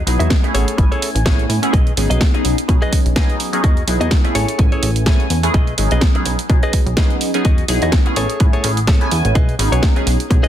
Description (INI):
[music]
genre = filtered disco house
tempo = 126 BPM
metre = 4/4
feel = swing 56% on 16ths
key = B mixolydian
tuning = A4 = 440 Hz
[part]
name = funky polysynth comp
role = accompaniment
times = 0.1-10.5 s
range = F#3 to G#5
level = -21 LUFS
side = equal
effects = chorus, phaser, vintage 12-bit sampler grit, sidechain pumping, low-pass filter
[part]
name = plucky analog bass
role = bass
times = 0.1-10.4 s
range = G#1 to B2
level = -19 LUFS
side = equal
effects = sidechain pumping, low-pass filter
[part]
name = house drum kit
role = drums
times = 0.1-10.5 s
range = hi-hat, snare drum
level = -23 LUFS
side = right 2 dB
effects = sidechain pumping on hats
[part]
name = direct-recorded clean electric guitar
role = riff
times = 0.2-10.5 s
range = F#4 to E5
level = -25 LUFS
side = left 2 dB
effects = sidechain pumping, low-pass filter
[part]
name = electronic kick drum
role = drums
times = 0.3-10.4 s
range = none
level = -14 LUFS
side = equal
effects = none
[sound]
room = light reverb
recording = dense, heavily limited modern master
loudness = -13 LUFS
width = side -11 dB against mid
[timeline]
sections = 0.0-10.5 A section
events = none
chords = 0.0 Emaj9; 0.5 Amaj7; 1.7 B6; 3.6 Emaj9; 4.4 Amaj7; 5.5 B6; 7.5 Emaj9; 8.2 Amaj7; 9.4 B6